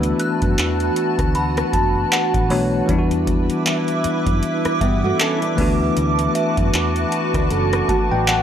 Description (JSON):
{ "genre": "contemporary R&B", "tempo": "78 BPM", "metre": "4/4", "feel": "swing 58% on 16ths", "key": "unclear", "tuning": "A4 = 439 Hz", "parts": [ { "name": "bell-like tine electric piano", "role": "accompaniment", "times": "0.0-8.4 s", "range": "E3 to A5", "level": "-21 LUFS", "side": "left 2 dB", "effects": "fast stereo tremolo" }, { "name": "glassy FM pad", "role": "sustained chords", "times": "0.0-8.4 s", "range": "E4 to D6", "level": "-22 LUFS", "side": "right 2 dB", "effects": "ensemble chorus, built-in reverb" }, { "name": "vintage muted fingered electric bass", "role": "bass", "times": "0.0-8.4 s", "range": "F#1 to G2", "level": "-23 LUFS", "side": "equal", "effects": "none" }, { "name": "booming analog drum machine", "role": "drums", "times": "0.0-8.4 s", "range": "handclaps, hi-hat, kick drum, rim click", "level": "-22 LUFS", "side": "equal", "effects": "overdrive" }, { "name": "synth chime", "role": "texture", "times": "0.0-8.4 s", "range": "B4 to F#6", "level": "-29 LUFS", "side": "equal", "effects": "ensemble chorus, tremolo, digital delay" }, { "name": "fingerpicked steel-string acoustic guitar", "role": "arpeggios", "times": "4.8-8.4 s", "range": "F#3 to B4", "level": "-25 LUFS", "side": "right 4 dB", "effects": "none" } ], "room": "light reverb, digital ambience", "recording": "none", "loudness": "-16 LUFS", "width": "side -9 dB against mid", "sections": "0.0-8.4 A section", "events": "tine electric piano fill 1.4-2.9, 7.5-8.4", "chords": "0.0 D6; 2.9 Em7; 5.6 D6" }